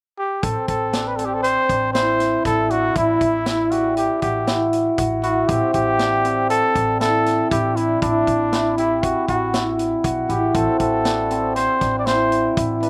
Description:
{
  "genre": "progressive instrumental, band music in an uneven meter",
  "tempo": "119 BPM",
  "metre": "5/4",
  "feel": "straight",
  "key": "A dorian",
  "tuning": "A4 = 440 Hz",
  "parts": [
    { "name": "mellow trumpet", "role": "melody", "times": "0.2-12.9 s", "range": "D4 to D5", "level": "-23 LUFS", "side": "equal", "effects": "slapback echo" },
    { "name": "cimbalom", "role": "arpeggios", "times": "0.4-12.9 s", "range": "C4 to G4", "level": "-23 LUFS", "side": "equal", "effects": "none" },
    { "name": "upright bass", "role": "bass", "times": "0.4-12.9 s", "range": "A1 to B1", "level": "-30 LUFS", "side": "equal", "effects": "none" },
    { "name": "vintage drum kit", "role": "drums", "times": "0.4-12.9 s", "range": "hi-hat, kick drum, snare drum", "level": "-29 LUFS", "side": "equal", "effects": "none" }
  ],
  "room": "little or no reverb",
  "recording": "recorded outdoors, with no room sound",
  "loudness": "-19 LUFS",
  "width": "mono",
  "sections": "0.4-12.9 A section",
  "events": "none",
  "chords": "0.4 Am"
}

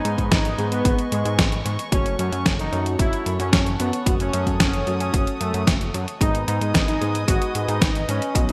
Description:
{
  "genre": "italo disco",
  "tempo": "112 BPM",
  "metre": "4/4",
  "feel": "straight",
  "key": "unclear",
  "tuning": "A4 = 440 Hz",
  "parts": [
    { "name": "analog synth brass", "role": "melody", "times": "0.0-8.5 s", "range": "G#3 to F#4", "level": "-29 LUFS", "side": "equal", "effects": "chorus, vintage 12-bit sampler grit, digital delay" },
    { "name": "dark chamber string section", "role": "sustained chords", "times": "0.0-8.5 s", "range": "A4 to D#6", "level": "-33 LUFS", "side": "equal", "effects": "none" },
    { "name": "dark baby grand piano", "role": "stabs", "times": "0.0-8.5 s", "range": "F#3 to G#4", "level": "-35 LUFS", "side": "equal", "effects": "lush chorus" },
    { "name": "fat analog bass", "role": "bass", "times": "0.0-8.5 s", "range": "F#1 to G#2", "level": "-28 LUFS", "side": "equal", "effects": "none" },
    { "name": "clean 12-bit digital drum machine", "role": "drums", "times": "0.1-8.5 s", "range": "hi-hat, snare drum", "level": "-26 LUFS", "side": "equal", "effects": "studio ambience, gated reverb" },
    { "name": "electronic kick drum", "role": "drums", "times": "0.2-8.5 s", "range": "none", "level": "-25 LUFS", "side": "equal", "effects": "studio ambience" }
  ],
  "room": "moderate lush hall reverb, RT60 1.7 s",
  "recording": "bright 1980s-style digital production",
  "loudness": "-22 LUFS",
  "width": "mono",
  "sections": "0.0-8.5 A section",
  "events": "none",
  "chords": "0.0 G#m; 1.9 F#m; 6.2 G#m"
}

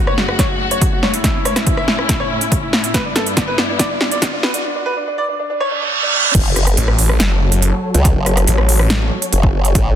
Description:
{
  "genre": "heavy wobble dubstep",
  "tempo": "141 BPM",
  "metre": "4/4",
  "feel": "half-time",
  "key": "F# phrygian",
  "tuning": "A4 = 440 Hz",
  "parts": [
    { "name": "bright baby grand piano", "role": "melody", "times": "0.0-6.3 s", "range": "D4 to E5", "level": "-21 LUFS", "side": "right 1 dB", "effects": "ping-pong delay" },
    { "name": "warm studio string section", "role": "sustained chords", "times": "0.0-10.0 s", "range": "F#2 to C#5", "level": "-23 LUFS", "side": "left 2 dB", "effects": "sidechain pumping, low-pass filter" },
    { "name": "riser, reverse cymbal and impact", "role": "sound effects", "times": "0.1-8.1 s", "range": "none", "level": "-22 LUFS", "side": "right 4 dB", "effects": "none" },
    { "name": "big-room dance drum kit", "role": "drums", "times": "0.1-9.8 s", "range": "crash cymbal, hi-hat, rim click, snare drum", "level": "-18 LUFS", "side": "equal", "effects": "overdrive" },
    { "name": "electronic kick drum", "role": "drums", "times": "0.4-9.8 s", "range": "none", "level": "-18 LUFS", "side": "equal", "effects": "overdrive" },
    { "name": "formant-sweep wobble bass", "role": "bass", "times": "6.3-10.0 s", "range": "F#1 to C#2", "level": "-15 LUFS", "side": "equal", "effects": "chorus, overdrive" },
    { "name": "snarling distorted saw bass", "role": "bass", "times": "6.8-9.1 s", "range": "F#1 to A1", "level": "-14 LUFS", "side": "equal", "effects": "overdrive" }
  ],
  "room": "light reverb",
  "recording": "dense, heavily limited modern master, high-pass filter",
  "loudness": "-13 LUFS",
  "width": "side -10 dB against mid",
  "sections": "0.0-6.3 A section; 6.3-10.0 B section",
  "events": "build-up 0.0-6.3; drum fill 0.0-4.6; filter sweep 0.0-6.3; reverse cymbal 5.6-6.3; drop 6.3-10.0; impact 6.3-8.1",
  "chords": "0.0 F#m; 1.2 A; 2.9 G6; 4.6 N.C.; 6.3 F#m"
}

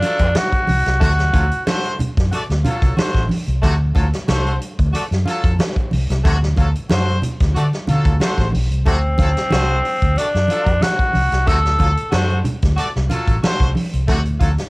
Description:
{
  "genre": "funk",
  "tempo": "92 BPM",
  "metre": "4/4",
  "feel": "straight",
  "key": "D mixolydian",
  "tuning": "A4 = 441 Hz",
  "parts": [
    { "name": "raspy tenor saxophone", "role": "melody", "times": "0.0-1.6, 8.9-12.1 s", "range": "C4 to A4", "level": "-19 LUFS", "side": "equal", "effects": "cassette tape, plate reverb" },
    { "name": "clear horn section", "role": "second line", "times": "0.0-14.5 s", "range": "C3 to D5", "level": "-24 LUFS", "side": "equal", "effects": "cassette tape, plate reverb" },
    { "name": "swinging big-band drum kit", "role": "drums", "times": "0.0-14.7 s", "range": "hi-hat, kick drum, snare drum", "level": "-20 LUFS", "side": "equal", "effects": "cassette tape" },
    { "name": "congas", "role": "percussion", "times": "0.0-14.6 s", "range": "none", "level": "-24 LUFS", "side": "right 1 dB", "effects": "none" },
    { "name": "vintage muted fingered electric bass", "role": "bass", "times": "0.2-14.6 s", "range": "A1 to D3", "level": "-18 LUFS", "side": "equal", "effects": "none" }
  ],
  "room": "light reverb",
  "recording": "home recording on cassette",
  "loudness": "-15 LUFS",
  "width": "side -25 dB against mid",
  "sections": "0.0-14.7 A section",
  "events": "none",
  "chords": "0.0 D7"
}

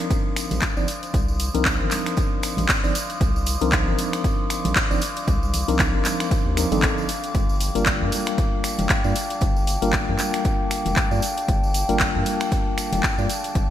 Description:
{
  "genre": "deep house",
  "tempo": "116 BPM",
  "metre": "4/4",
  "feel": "swing 57% on 16ths",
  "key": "G minor",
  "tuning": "A4 = 436 Hz",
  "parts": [
    { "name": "dark analog pad", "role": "sustained chords", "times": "0.0-13.7 s", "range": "F5 to Eb6", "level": "-29 LUFS", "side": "left 1 dB", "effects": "chorus, sidechain pumping" },
    { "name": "mellow tine electric piano", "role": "stabs", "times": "0.0-13.3 s", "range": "F3 to D5", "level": "-27 LUFS", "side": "left 1 dB", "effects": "medium stereo tremolo, sidechain pumping, ping-pong delay" },
    { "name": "house drum kit", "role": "drums", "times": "0.0-13.7 s", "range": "finger snaps, handclaps, hi-hat", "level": "-26 LUFS", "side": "equal", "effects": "small room reverb" },
    { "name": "electronic kick drum", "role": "drums", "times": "0.1-13.7 s", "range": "none", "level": "-23 LUFS", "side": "equal", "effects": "small room reverb" },
    { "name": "tambourine", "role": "percussion", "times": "0.1-13.7 s", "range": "none", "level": "-34 LUFS", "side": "right 5 dB", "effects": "none" },
    { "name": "round analog bass", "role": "bass", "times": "0.5-13.7 s", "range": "F1 to G2", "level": "-26 LUFS", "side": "equal", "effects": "sidechain pumping" },
    { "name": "congas", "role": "percussion", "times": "0.5-13.7 s", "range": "none", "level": "-33 LUFS", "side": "left 3 dB", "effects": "none" }
  ],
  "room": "moderate plate reverb, RT60 2.8 s",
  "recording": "bright 1980s-style digital production",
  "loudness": "-19 LUFS",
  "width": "side -11 dB against mid",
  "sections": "0.0-13.7 A section",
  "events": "none",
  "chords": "0.0 Cm11; 7.1 Gm7"
}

